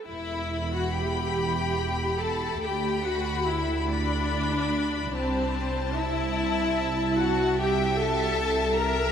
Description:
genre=classical, slow romantic movement for string orchestra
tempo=48 BPM (dotted quarters)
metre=6/8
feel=rubato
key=E minor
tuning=A4 = 441 Hz
part: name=rich chamber viola section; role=accompaniment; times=0.0-9.1 s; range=C4 to Bb4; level=-28 LUFS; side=equal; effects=none
part: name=rich chamber violin section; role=melody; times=0.1-9.1 s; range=E5 to B5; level=-32 LUFS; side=left 6 dB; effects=none
part: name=rich chamber violin section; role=second line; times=0.1-9.1 s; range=C5 to Bb5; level=-32 LUFS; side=left 3 dB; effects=none
part: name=rich chamber cello section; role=bass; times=0.1-9.1 s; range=C2 to E2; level=-34 LUFS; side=right 4 dB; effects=none
part: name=rich studio double bass section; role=bass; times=0.1-9.1 s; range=E1 to D2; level=-32 LUFS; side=right 2 dB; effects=none
room=wet huge ambient reverb, RT60 8.2 s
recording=in a vast, echoing space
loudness=-24 LUFS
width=side -8 dB against mid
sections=0.1-9.1 A section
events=none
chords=0.1 Em; 2.6 Bm/D; 5.1 Am/C; 7.6 C7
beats=| 0.07 1.37 | 2.62 3.89 | 5.14 6.37 | 7.60 8.80

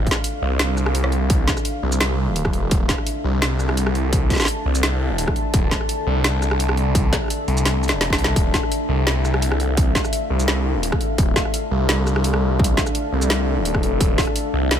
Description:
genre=half-time drum and bass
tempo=170 BPM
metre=4/4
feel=half-time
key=D minor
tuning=A4 = 440 Hz
part: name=deep dark ambient pad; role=sustained chords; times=0.0-14.8 s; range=D4 to A5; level=-26 LUFS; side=left 2 dB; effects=chorus, built-in reverb, sidechain pumping
part: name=phased detuned saw bass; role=bass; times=0.0-14.8 s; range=D1 to C2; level=-20 LUFS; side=equal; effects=phaser
part: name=drum and bass drum kit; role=drums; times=0.1-14.8 s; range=hi-hat, rim click, shaker, snare drum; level=-23 LUFS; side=equal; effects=overdrive
part: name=electronic kick drum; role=drums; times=0.1-14.3 s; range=none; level=-21 LUFS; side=equal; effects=distortion
room=digital ambience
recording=none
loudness=-17 LUFS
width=side -9 dB against mid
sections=0.0-14.8 A section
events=drum fill 7.7-8.4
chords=0.0 Dm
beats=0.24 0.59 0.95 | 1.30 1.65 2.01 2.36 | 2.71 3.07 3.42 3.77 | 4.12 4.48 4.83 5.18 | 5.54 5.89 6.24 6.59 | 6.95 7.30 7.65 8.01 | 8.36 8.71 9.07 9.42 | 9.77 10.12 10.48 10.83 | 11.18 11.54 11.89 12.24 | 12.60 12.95 13.30 13.65 | 14.01 14.36 14.71

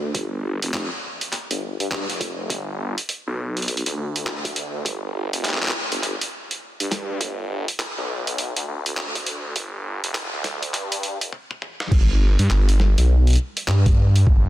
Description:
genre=glitch hop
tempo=102 BPM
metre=4/4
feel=swing 62% on 16ths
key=unclear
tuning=A4 = 441 Hz
part: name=phased detuned saw bass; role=bass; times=0.0-14.5 s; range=F1 to G2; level=-22 LUFS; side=equal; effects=phaser, tube saturation, high-pass filter
part: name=boom bap sampler-style drum kit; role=drums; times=0.1-14.2 s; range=crash cymbal, handclaps, hi-hat, snare drum, toms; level=-26 LUFS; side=equal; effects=soft clipping on snare
part: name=electronic kick drum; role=drums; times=0.1-14.4 s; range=none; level=-19 LUFS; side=equal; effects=high-pass filter on kick, high-pass filter on room
room=light reverb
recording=dense, heavily limited modern master, high-pass filter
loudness=-20 LUFS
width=side -15 dB against mid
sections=0.0-11.9 A section; 11.9-14.5 B section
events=build-up 0.0-11.9; drum fill 11.3-11.9; stop 11.3-11.9; drop 11.9-14.5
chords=none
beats=| 0.15 0.74 1.32 1.91 | 2.50 3.09 3.68 4.27 | 4.85 5.44 6.03 6.62 | 7.21 7.79 8.38 8.97 | 9.56 10.15 10.74 11.32 | 11.91 12.50 13.09 13.68 | 14.27

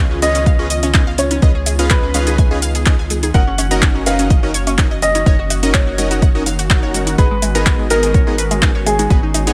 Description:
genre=progressive house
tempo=125 BPM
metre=4/4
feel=straight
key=unclear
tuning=A4 = 441 Hz
part: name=warm baby grand piano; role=melody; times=0.0-9.5 s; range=G#4 to F#5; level=-23 LUFS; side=equal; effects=sidechain pumping, dub echo
part: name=airy breathy pad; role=sustained chords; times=0.1-9.5 s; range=D#3 to F#4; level=-29 LUFS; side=equal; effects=chorus, sidechain pumping
part: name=glassy wavetable pluck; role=arpeggios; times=0.0-9.5 s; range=G#3 to G#5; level=-27 LUFS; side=equal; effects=chorus, sidechain pumping, dub echo
part: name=supersaw stab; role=stabs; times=0.0-9.5 s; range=B3 to F#5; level=-24 LUFS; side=equal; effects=sidechain pumping, dub echo
part: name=tight sequencer bass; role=bass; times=0.0-9.5 s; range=F#1 to C#2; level=-23 LUFS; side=equal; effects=sidechain pumping
part: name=deep house drum kit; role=drums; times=0.2-9.5 s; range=handclaps, hi-hat, shaker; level=-22 LUFS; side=equal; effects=none
part: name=electronic kick drum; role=drums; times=0.5-9.2 s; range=none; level=-15 LUFS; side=equal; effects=none
part: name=bongos and congas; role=percussion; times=0.8-9.4 s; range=none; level=-29 LUFS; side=equal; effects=overdrive, sidechain pumping on perc
part: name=drifting glass-harmonics texture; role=texture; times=7.9-9.5 s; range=C#4 to C#5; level=-35 LUFS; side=equal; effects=none
room=little or no reverb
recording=none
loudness=-15 LUFS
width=mono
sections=0.0-9.5 A section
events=none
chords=0.0 C#9; 3.3 F#6; 7.2 G#m7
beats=0.46 0.94 | 1.42 1.90 2.38 2.86 | 3.34 3.82 4.30 4.78 | 5.26 5.74 6.22 6.70 | 7.18 7.66 8.14 8.62 | 9.10

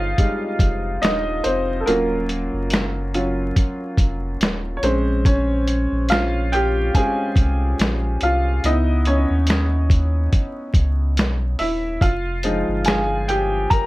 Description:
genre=lo-fi hip hop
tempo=71 BPM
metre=4/4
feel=swing 57% on 16ths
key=unclear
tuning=A4 = 441 Hz
part: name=clear upright piano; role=accompaniment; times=0.0-13.9 s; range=F3 to Bb5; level=-21 LUFS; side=equal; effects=cassette tape, low-pass filter
part: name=warm sub bass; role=bass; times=0.0-13.7 s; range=Eb1 to Eb2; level=-22 LUFS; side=equal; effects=none
part: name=lo-fi sampler-style drum kit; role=drums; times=0.2-13.9 s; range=finger snaps, hi-hat, kick drum, snare drum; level=-19 LUFS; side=equal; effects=none
room=light reverb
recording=vinyl crackle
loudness=-17 LUFS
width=side -18 dB against mid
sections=0.0-13.9 A section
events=upright piano solo 0.0-13.9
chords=0.0 Fm9; 1.9 Ebm9; 4.8 Bbm9; 8.6 Dbm9; 12.0 Fm9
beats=0.18 1.03 | 1.87 2.72 3.56 4.41 | 5.25 6.10 6.94 7.79 | 8.63 9.48 10.32 11.17 | 12.01 12.86 13.70

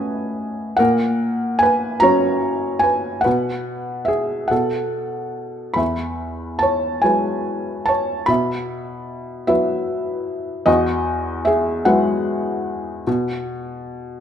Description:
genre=classical, lyrical solo piano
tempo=49 BPM (dotted quarters)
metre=6/8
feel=uneven beats, rubato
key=E major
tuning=A4 = 440 Hz
part: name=felt-muted upright piano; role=solo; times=0.0-14.2 s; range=E2 to B5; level=-18 LUFS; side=equal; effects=none
room=moderate recital hall reverb, RT60 1.6 s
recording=minimal, uncompressed stereo recording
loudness=-18 LUFS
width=side -8 dB against mid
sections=0.0-14.2 A section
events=none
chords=0.0 Aadd9; 0.8 F#/A#; 3.3 Eadd9/B; 4.5 B5; 5.8 Eadd9; 8.3 Bsus4; 10.7 Eadd9; 13.1 N.C.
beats=| 0.80 2.02 | 3.26 4.51 | 5.78 7.05 | 8.29 9.48 | 10.67 11.87 | 13.07

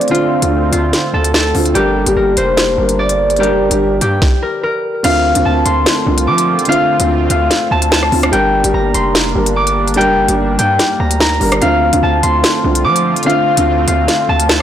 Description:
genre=hip hop, drill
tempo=146 BPM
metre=4/4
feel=half-time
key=D minor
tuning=A4 = 439 Hz
part: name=concert harp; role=melody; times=0.0-14.6 s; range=F4 to D6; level=-15 LUFS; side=left 1 dB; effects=low-pass filter
part: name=dark baby grand piano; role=accompaniment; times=0.0-14.6 s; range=D3 to Bb4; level=-17 LUFS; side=equal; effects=low-pass filter
part: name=sweeping resonant pad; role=sustained chords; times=0.0-14.6 s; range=D3 to F4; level=-22 LUFS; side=right 1 dB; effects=chorus
part: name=drill drum kit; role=drums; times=0.0-14.6 s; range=crash cymbal, hi-hat, kick drum, rim click, snare drum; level=-16 LUFS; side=equal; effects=none
part: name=distorted 808-style bass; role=bass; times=0.4-14.6 s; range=F1 to F3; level=-18 LUFS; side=equal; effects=distortion
room=light reverb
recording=blown-out, overdriven recording, overdrive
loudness=-11 LUFS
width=side -10 dB against mid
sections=0.0-5.0 A section; 5.0-14.6 B section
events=stop 4.2-5.0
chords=0.0 Dm7; 1.8 Gm; 5.0 Dm7; 8.3 Gm; 11.6 Dm7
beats=| 0.11 0.52 0.93 1.34 | 1.75 2.16 2.58 2.98 | 3.40 3.81 4.22 4.63 | 5.04 5.45 5.86 6.27 | 6.68 7.09 7.51 7.92 | 8.33 8.74 9.15 9.56 | 9.97 10.38 10.79 11.21 | 11.62 12.03 12.44 12.85 | 13.26 13.67 14.08 14.49

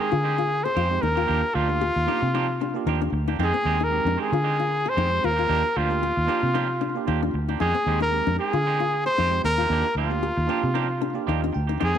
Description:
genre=afrobeat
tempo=114 BPM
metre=4/4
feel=swing 55% on 16ths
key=unclear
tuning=A4 = 440 Hz
part: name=clear trumpet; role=melody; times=0.0-12.0 s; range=F4 to C5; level=-24 LUFS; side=equal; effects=slapback echo
part: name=barky tine electric piano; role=accompaniment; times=0.0-11.8 s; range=Ab3 to G5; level=-33 LUFS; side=right 12 dB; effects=none
part: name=clean electric guitar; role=stabs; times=0.0-12.0 s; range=Eb3 to G4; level=-32 LUFS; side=right 12 dB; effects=none
part: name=nylon-string guitar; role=arpeggios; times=0.1-12.0 s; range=C4 to Ab4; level=-31 LUFS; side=left 12 dB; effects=slapback echo
part: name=fingered electric bass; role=bass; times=0.1-11.9 s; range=D2 to D3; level=-26 LUFS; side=equal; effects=none
room=light reverb, small room ambience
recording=1960s-style stereo with parts hard left and right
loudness=-21 LUFS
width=side -9 dB against mid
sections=0.0-12.0 A section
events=tine electric piano fill 11.0-11.8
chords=0.0 Fm9; 1.3 Ebmaj9; 3.4 Fm9; 5.5 Ebmaj9; 7.6 Fm9; 9.7 Ebmaj9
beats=0.24 0.77 | 1.29 1.82 2.35 2.87 | 3.40 3.92 4.45 4.97 | 5.50 6.03 6.55 7.08 | 7.60 8.13 8.65 9.18 | 9.71 10.23 10.76 11.28 | 11.81

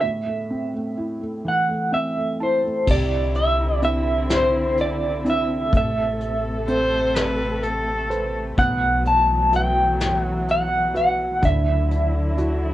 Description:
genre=acoustic folk-pop ballad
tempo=42 BPM (dotted quarters)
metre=6/8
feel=straight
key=unclear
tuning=A4 = 440 Hz
part: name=electric guitar through a small old amp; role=melody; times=0.0-12.7 s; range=C5 to A5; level=-21 LUFS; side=equal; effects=tremolo, cassette tape
part: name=felt-muted upright piano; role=accompaniment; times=0.0-12.7 s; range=A2 to A5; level=-27 LUFS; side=right 1 dB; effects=cassette tape
part: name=dark chamber string section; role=sustained chords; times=2.9-12.7 s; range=C3 to A4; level=-29 LUFS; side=left 1 dB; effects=cassette tape
part: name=upright bass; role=bass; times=2.9-12.7 s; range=A1 to D2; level=-25 LUFS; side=equal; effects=none
part: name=soft brush drum kit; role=drums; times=2.9-12.6 s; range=crash cymbal, hi-hat, kick drum, snare drum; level=-24 LUFS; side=left 1 dB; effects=cassette tape
part: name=rich viola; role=second line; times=6.7-8.3 s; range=A4 to C5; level=-23 LUFS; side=equal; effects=cassette tape
room=moderate booth ambience, RT60 0.3 s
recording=home recording on cassette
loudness=-19 LUFS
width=side -14 dB against mid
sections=0.0-2.9 A section; 2.9-12.7 B section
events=none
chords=0.0 Am; 2.9 Cadd9; 5.7 Amadd9; 8.6 Bsus4; 11.4 Dadd9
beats=| 0.02 1.45 | 2.87 4.30 | 5.73 7.15 | 8.58 10.00 | 11.43

